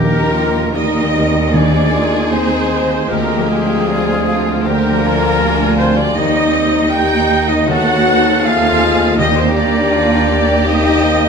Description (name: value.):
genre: classical, slow romantic movement for symphony orchestra.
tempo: 66-83 BPM.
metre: 4/4.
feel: rubato.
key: Eb major.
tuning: A4 = 440 Hz.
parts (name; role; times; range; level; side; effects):
rich chamber violin section; melody; 0.0-11.3 s; Eb4 to Bb4; -23 LUFS; left 2 dB; none.
dark clarinet; second line; 0.0-11.3 s; Eb4 to C5; -27 LUFS; left 1 dB; none.
rich chamber violin section; second line; 0.0-11.3 s; A3 to Eb4; -25 LUFS; left 2 dB; none.
warm oboe; second line; 0.0-11.3 s; F5 to Bb5; -26 LUFS; right 3 dB; none.
wooden flute; second line; 0.0-11.3 s; Ab4 to G5; -22 LUFS; left 2 dB; none.
clear symphonic viola section; accompaniment; 0.0-11.3 s; Ab4 to G5; -18 LUFS; right 1 dB; none.
mellow bassoon; accompaniment; 0.0-11.3 s; D3 to Bb3; -24 LUFS; right 2 dB; none.
mellow French horn section; sustained chords; 0.0-11.3 s; Ab3 to G4; -20 LUFS; left 3 dB; none.
concert harp; arpeggios; 0.0-11.3 s; D3 to C6; -23 LUFS; left 10 dB; none.
rich symphonic cello section; bass; 0.0-11.3 s; D2 to Eb2; -19 LUFS; right 4 dB; none.
rich symphonic double bass section; bass; 0.0-11.3 s; D2 to Eb2; -21 LUFS; right 3 dB; none.
timpani; percussion; 0.0-2.7, 7.7-10.2 s; Eb3; -21 LUFS; equal; none.
room: moderate scoring stage reverb, RT60 1.6 s.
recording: none.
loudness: -11 LUFS.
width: side -6 dB against mid.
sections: 0.0-11.3 A section.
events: none.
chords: 0.0 Eb; 1.5 Ab/Eb; 3.1 Bb7/D; 6.2 Eb; 7.7 Ebdim7; 9.2 Eb.